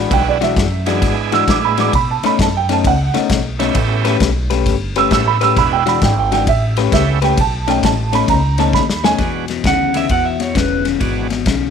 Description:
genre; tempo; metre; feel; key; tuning
electric blues shuffle; 132 BPM; 4/4; swing 66% on 8ths; E mixolydian; A4 = 440 Hz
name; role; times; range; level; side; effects
dark upright piano; second line; 0.0-9.2 s; D5 to E6; -17 LUFS; right 11 dB; none
electric guitar through a small old amp; riff; 0.0-11.7 s; E2 to B4; -19 LUFS; left 14 dB; none
upright bass; bass; 0.0-11.7 s; E1 to B2; -19 LUFS; equal; none
bright tonewheel organ; accompaniment; 0.1-11.3 s; G#3 to G#4; -22 LUFS; right 14 dB; slow rotary speaker, overdrive
natural country drum kit; drums; 0.1-11.6 s; kick drum, ride cymbal, snare drum; -20 LUFS; left 2 dB; none
electric guitar through a small old amp; melody; 9.7-10.8 s; B4 to F#5; -18 LUFS; right 4 dB; none
room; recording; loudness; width
light reverb, studio reverb; 1960s-style stereo with parts hard left and right; -13 LUFS; side -7 dB against mid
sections
0.0-9.2 A section; 9.2-11.7 B section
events
upright piano solo 0.0-9.2; drum fill 8.7-9.2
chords
0.0 E9; 1.9 B9; 3.8 A9; 5.6 E9; 6.5 A9; 7.4 B9; 9.2 E9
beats
| 0.12 0.57 1.02 1.48 | 1.93 2.39 2.84 3.30 | 3.75 4.21 4.66 5.11 | 5.57 6.02 6.47 6.93 | 7.38 7.83 8.29 8.74 | 9.19 9.64 10.10 10.55 | 11.01 11.46

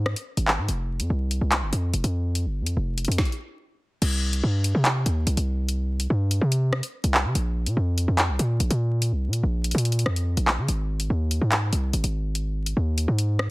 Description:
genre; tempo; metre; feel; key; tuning
hip hop, drill; 144 BPM; 4/4; half-time; C minor; A4 = 440 Hz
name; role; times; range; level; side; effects
hard-hitting 808-style bass; bass; 0.0-13.5 s; F1 to Db3; -23 LUFS; equal; none
drill drum kit; drums; 0.1-13.5 s; crash cymbal, handclaps, hi-hat, kick drum, rim click, snare drum; -25 LUFS; equal; none
room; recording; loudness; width
little or no reverb; dense, heavily limited modern master, vinyl crackle; -22 LUFS; side -22 dB against mid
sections
0.0-4.0 A section; 4.0-13.5 B section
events
stop 3.2-4.0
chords
none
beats
0.27 | 0.69 1.10 1.52 1.94 | 2.35 2.77 3.19 3.60 | 4.02 4.43 4.85 5.27 | 5.68 6.10 6.52 6.93 | 7.35 7.77 8.19 8.60 | 9.02 9.44 9.85 10.27 | 10.69 11.10 11.52 11.94 | 12.35 12.77 13.19

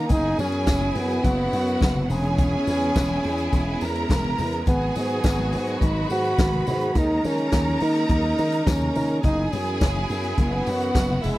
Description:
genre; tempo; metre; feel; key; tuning
disco; 105 BPM; 4/4; straight; unclear; A4 = 444 Hz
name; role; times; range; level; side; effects
dark trombone; melody; 0.0-11.4 s; G#3 to F#4; -25 LUFS; equal; none
rich studio violin section; second line; 0.0-11.4 s; E4 to B5; -30 LUFS; right 2 dB; none
clear symphonic string section; sustained chords; 0.0-11.4 s; C#3 to F#4; -31 LUFS; right 1 dB; none
slap bass with an envelope filter; bass; 0.0-11.4 s; E1 to D#3; -26 LUFS; equal; none
vintage drum kit; drums; 0.1-11.4 s; hi-hat, kick drum, snare drum; -23 LUFS; equal; none
congas; percussion; 0.1-11.4 s; none; -34 LUFS; left 3 dB; none
tambourine; percussion; 0.1-11.4 s; none; -44 LUFS; left 6 dB; none
room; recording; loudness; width
little or no reverb; dry, close 1970s-style studio recording; -20 LUFS; side -16 dB against mid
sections
0.0-11.4 A section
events
none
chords
0.1 F#7sus4; 2.1 E6; 4.7 G#m7; 7.0 D#7sus4; 9.2 F#7sus4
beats
| 0.10 0.67 1.24 1.81 | 2.38 2.96 3.53 4.10 | 4.67 5.24 5.81 6.38 | 6.96 7.53 8.10 8.67 | 9.24 9.81 10.38 10.95

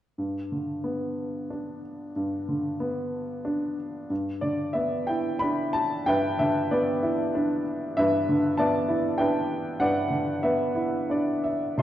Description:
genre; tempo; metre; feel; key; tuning
classical, lyrical solo piano; 88-99 BPM; 3/4; rubato; G major; A4 = 440 Hz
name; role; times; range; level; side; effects
clear upright piano; solo; 0.2-11.8 s; G2 to C6; -24 LUFS; equal; none
room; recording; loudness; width
moderate recital hall reverb, RT60 1.3 s; dark, warm production; -24 LUFS; side -12 dB against mid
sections
0.2-4.1 A section; 4.1-11.8 B section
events
none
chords
0.2 G; 4.1 G6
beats
| 0.18 0.86 1.51 | 2.16 2.81 3.46 | 4.11 4.76 5.42 | 6.06 6.70 7.34 | 7.97 8.59 9.19 | 9.81 10.44 11.11 | 11.79

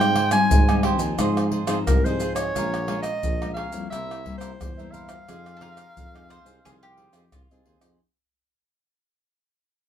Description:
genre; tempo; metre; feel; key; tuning
samba and choro; 88 BPM; 4/4; straight; F minor; A4 = 439 Hz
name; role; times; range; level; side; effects
bright clarinet; melody; 0.0-7.3 s; Bb4 to Ab5; -26 LUFS; right 2 dB; none
cavaquinho; accompaniment; 0.0-8.0 s; E4 to Bb5; -31 LUFS; right 5 dB; none
nylon-string guitar; accompaniment; 0.0-8.0 s; G2 to Ab4; -28 LUFS; left 5 dB; none
mellow tuba; bass; 0.0-8.0 s; Bb1 to Ab2; -28 LUFS; right 1 dB; none
maracas, pandeiro, tamborim and surdo; percussion; 0.0-8.0 s; none; -24 LUFS; equal; none
bowl-back mandolin; second line; 5.6-8.0 s; F4 to C5; -57 LUFS; right 1 dB; none
room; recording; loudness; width
moderate studio ambience, RT60 0.5 s; minimal, uncompressed stereo recording; -20 LUFS; side -9 dB against mid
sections
0.0-8.0 A section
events
fade-out 0.0-8.0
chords
0.0 Abmaj7; 1.2 Fm7/Ab; 2.6 Bbm7; 3.9 C7; 5.3 Fm7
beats
0.51 1.19 1.88 | 2.56 3.24 3.92 4.61 | 5.29 5.97 6.65 7.33

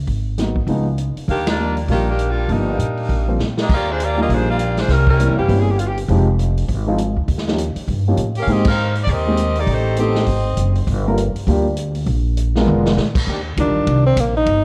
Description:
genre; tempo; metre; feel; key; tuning
jazz, big band swing; 200 BPM; 4/4; swing 60% on 8ths; Eb major; A4 = 441 Hz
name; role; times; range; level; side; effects
upright bass; bass; 0.0-14.6 s; F1 to Bb2; -21 LUFS; equal; none
swinging big-band drum kit; drums; 0.1-14.6 s; crash cymbal, hi-hat, kick drum, ride cymbal, snare drum, toms; -25 LUFS; equal; none
warm grand piano; accompaniment; 0.4-14.0 s; Eb3 to Bb4; -24 LUFS; equal; none
bright saxophone section; melody; 1.3-6.0, 8.4-10.7 s; Eb3 to F5; -23 LUFS; equal; none
bright trombone section; sustained chords; 13.3-13.4 s; Eb3 to G4; -33 LUFS; equal; none
mellow tenor saxophone; melody; 13.6-14.6 s; Bb3 to Eb4; -19 LUFS; equal; none
room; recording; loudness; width
light reverb; worn, warbling old tape, cassette tape, warbly pitch drift; -18 LUFS; mono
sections
0.0-3.7 A section; 3.7-13.3 B section; 13.3-14.6 C section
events
band accent 1.4, 8.6; drum fill 3.4, 12.7; tenor saxophone solo 13.3-14.6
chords
0.1 Abm7; 0.7 Db9; 1.3 Ebmaj7; 3.7 Ebmaj9; 4.9 C7b9; 6.1 Fm9; 7.3 Eb7; 8.5 Abmaj9; 9.7 Am7b5; 10.3 Ab7; 10.9 Gm7; 12.1 Bb7b9; 13.3 Ebmaj7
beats
| 0.09 0.39 0.69 0.99 | 1.29 1.59 1.89 2.19 | 2.49 2.79 3.09 3.39 | 3.69 3.99 4.29 4.59 | 4.89 5.19 5.49 5.79 | 6.09 6.39 6.69 6.99 | 7.29 7.59 7.89 8.19 | 8.48 8.79 9.08 9.38 | 9.68 9.98 10.28 10.58 | 10.88 11.18 11.48 11.78 | 12.08 12.38 12.68 12.97 | 13.27 13.57 13.87 14.17 | 14.47

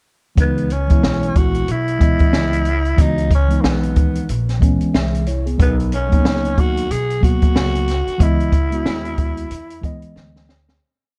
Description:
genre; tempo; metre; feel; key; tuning
hip hop, jazz-hop; 92 BPM; 4/4; swing 60% on 16ths; C# dorian; A4 = 440 Hz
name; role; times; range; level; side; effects
growling tenor saxophone; melody; 0.4-10.2 s; A#3 to G#4; -25 LUFS; equal; none
mellow tine electric piano; accompaniment; 0.4-10.5 s; E3 to E5; -24 LUFS; equal; none
upright bass; bass; 0.4-10.8 s; A#1 to E2; -24 LUFS; equal; none
open jazz drum kit; drums; 0.4-10.8 s; hi-hat, kick drum, snare drum; -19 LUFS; equal; vintage 12-bit sampler grit
room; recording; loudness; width
studio ambience; dark, warm production; -17 LUFS; mono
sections
0.4-10.8 A section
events
fade-out 8.2-10.8; drum fill 10.2-10.8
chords
0.4 C#m9; 5.6 Bmaj9; 8.2 C#m7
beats
| 0.38 1.03 1.68 2.34 | 2.99 3.64 4.29 4.95 | 5.60 6.25 6.90 7.55 | 8.21 8.86 9.51 10.16

